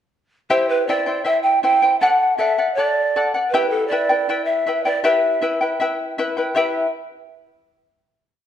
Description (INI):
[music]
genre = andean folk, Andean ensemble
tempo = 80 BPM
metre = 2/4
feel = straight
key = E minor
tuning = A4 = 437 Hz
[part]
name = breathy mellow large pan pipes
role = melody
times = 0.5-6.9 s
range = A4 to G5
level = -18 LUFS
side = right 1 dB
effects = none
[part]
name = charango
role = accompaniment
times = 0.5-6.9 s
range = E4 to G5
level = -20 LUFS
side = left 2 dB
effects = none
[sound]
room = moderate recital hall reverb, RT60 1.3 s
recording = dark, warm production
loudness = -16 LUFS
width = side -10 dB against mid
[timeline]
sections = 0.5-6.5 A section; 6.5-8.1 final chord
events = none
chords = 0.5 C; 2.0 D; 3.5 Em